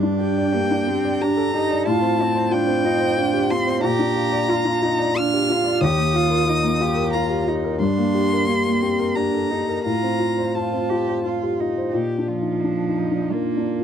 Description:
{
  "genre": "neoclassical piano and strings",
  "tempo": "84-93 BPM",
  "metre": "3/4",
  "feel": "rubato",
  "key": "Bb major",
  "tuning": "A4 = 440 Hz",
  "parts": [
    { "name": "rich cello", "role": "second line", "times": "0.0-13.8 s", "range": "F3 to G4", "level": "-25 LUFS", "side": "right 12 dB", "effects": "none" },
    { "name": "dark baby grand piano", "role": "accompaniment", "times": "0.0-13.8 s", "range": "Eb2 to D5", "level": "-21 LUFS", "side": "left 3 dB", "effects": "none" },
    { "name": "rich violin", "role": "melody", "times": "0.2-13.8 s", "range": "D4 to F6", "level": "-25 LUFS", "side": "left 2 dB", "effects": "none" }
  ],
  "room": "light reverb",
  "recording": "dry, close 1970s-style studio recording",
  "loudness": "-18 LUFS",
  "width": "side -8 dB against mid",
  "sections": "0.0-11.9 A section; 11.9-13.8 B section",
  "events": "none",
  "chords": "0.0 Gmadd9; 1.9 Fadd9/A; 3.8 Bb; 5.8 Ebadd9; 7.8 Gmadd9; 9.8 Fadd9/A; 11.9 Bb"
}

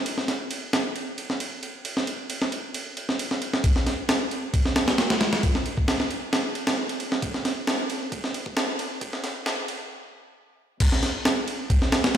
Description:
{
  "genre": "breakbeat",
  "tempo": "134 BPM",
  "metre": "4/4",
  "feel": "straight",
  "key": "none",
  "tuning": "none",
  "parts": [
    { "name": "breakbeat sampler-style drum kit", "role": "drums", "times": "0.1-12.2 s", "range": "crash cymbal, kick drum, ride cymbal, snare drum", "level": "-23 LUFS", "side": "equal", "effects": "none" }
  ],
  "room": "moderate lush hall reverb, RT60 2.1 s",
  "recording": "played on a big sound system in a bare room, stone room reverb, high-pass filter",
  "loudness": "-23 LUFS",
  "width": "side -9 dB against mid",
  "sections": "0.0-3.6 A section; 3.6-10.8 B section; 10.8-12.2 C section",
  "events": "build-up 3.6-10.8; filter sweep 3.6-10.8; stop 9.9-10.8; drop 10.8-12.2",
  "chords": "none"
}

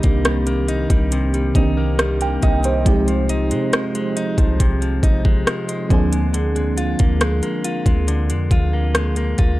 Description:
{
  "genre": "contemporary R&B",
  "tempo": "69 BPM",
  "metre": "4/4",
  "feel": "straight",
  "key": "unclear",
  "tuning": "A4 = 445 Hz",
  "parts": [
    { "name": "mellow FM electric piano", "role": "accompaniment", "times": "0.0-9.6 s", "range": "Eb3 to G5", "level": "-22 LUFS", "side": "right 2 dB", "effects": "chorus" },
    { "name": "direct-recorded clean electric guitar", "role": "arpeggios", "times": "0.0-9.6 s", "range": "C3 to F4", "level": "-24 LUFS", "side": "left 2 dB", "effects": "none" },
    { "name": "warm 808-style bass", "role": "bass", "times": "0.0-9.6 s", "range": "Bb1 to C3", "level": "-20 LUFS", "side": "equal", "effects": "transformer saturation" },
    { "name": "smooth R&B drum kit", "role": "drums", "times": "0.0-9.6 s", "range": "hi-hat, kick drum, rim click", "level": "-18 LUFS", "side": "equal", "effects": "overdrive" }
  ],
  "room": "little or no reverb",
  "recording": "dry, gritty hardware recording",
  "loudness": "-16 LUFS",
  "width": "side -17 dB against mid",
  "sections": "0.0-9.6 A section",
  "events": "none",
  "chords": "0.0 Cm7; 2.9 Fm7/C; 5.9 Bb7/D"
}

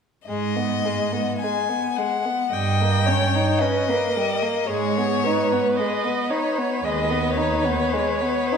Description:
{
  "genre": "classical, slow romantic movement for string quartet",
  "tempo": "55 BPM",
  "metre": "4/4",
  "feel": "rubato",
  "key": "G# minor",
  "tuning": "A4 = 440 Hz",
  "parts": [
    { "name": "rich violin", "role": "melody", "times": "0.3-8.6 s", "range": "B4 to G#5", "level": "-25 LUFS", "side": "left 6 dB", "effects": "none" },
    { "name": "warm violin", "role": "second line", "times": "0.3-8.6 s", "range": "G3 to D#4", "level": "-25 LUFS", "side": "left 3 dB", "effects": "none" },
    { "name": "rich cello", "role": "bass", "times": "0.3-7.7 s", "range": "D#2 to G#2", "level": "-26 LUFS", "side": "right 5 dB", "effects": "none" },
    { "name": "warm viola", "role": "accompaniment", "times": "2.5-8.6 s", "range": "G#4 to D#5", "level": "-25 LUFS", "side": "right 3 dB", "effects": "none" }
  ],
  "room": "wet recital hall reverb, RT60 1.6 s",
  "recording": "recorded in a church or concert hall",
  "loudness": "-20 LUFS",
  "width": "side -6 dB against mid",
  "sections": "0.3-8.6 A section",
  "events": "none",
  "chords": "0.3 G#m; 2.5 D#7/G; 4.7 G#m"
}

